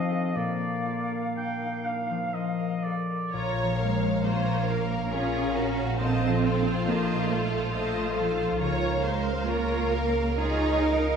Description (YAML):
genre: classical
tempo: 59-72 BPM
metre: 3/4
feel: rubato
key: Bb major, Bb minor from 3.3 s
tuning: A4 = 440 Hz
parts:
  - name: bright concert flute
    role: second line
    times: 0.0-3.0 s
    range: F5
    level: -37 LUFS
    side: left 2 dB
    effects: none
  - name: clear oboe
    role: second line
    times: 0.0-3.3 s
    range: D5 to G5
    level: -34 LUFS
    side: right 2 dB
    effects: none
  - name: warm clarinet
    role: second line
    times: 0.0-2.3 s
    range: Bb3 to C4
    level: -34 LUFS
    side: equal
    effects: none
  - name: warm bassoon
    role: accompaniment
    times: 0.0-3.0 s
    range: F3 to Bb3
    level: -35 LUFS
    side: right 2 dB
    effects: none
  - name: concert harp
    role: arpeggios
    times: 0.0-11.2 s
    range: Bb2 to Eb5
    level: -32 LUFS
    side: left 5 dB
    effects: none
  - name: rich studio violin section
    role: melody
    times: 3.3-11.2 s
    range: F5 to Bb5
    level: -39 LUFS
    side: left 3 dB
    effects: none
  - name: rich studio violin section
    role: second line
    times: 3.3-11.2 s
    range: F4 to Db5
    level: -32 LUFS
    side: right 1 dB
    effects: none
  - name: clear studio viola section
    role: accompaniment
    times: 3.3-11.2 s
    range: F4 to Eb5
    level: -33 LUFS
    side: right 2 dB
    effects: none
  - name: mellow French horn section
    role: sustained chords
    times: 3.3-11.2 s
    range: A4 to F5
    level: -33 LUFS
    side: left 2 dB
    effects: none
  - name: clear studio double bass section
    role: bass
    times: 3.3-11.2 s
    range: Bb1 to Db2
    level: -30 LUFS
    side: right 4 dB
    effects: none
  - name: rich studio cello section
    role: bass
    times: 3.8-11.2 s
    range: F3 to Eb4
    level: -29 LUFS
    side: right 3 dB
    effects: none
room: wet scoring stage reverb, RT60 1.8 s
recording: heard from further back in the room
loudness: -24 LUFS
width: side -6 dB against mid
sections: 0.0-3.3 A section; 3.3-11.2 B section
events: none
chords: 0.4 Bb; 3.3 Bbm; 6.0 F7/Bb; 8.6 Bbm/Db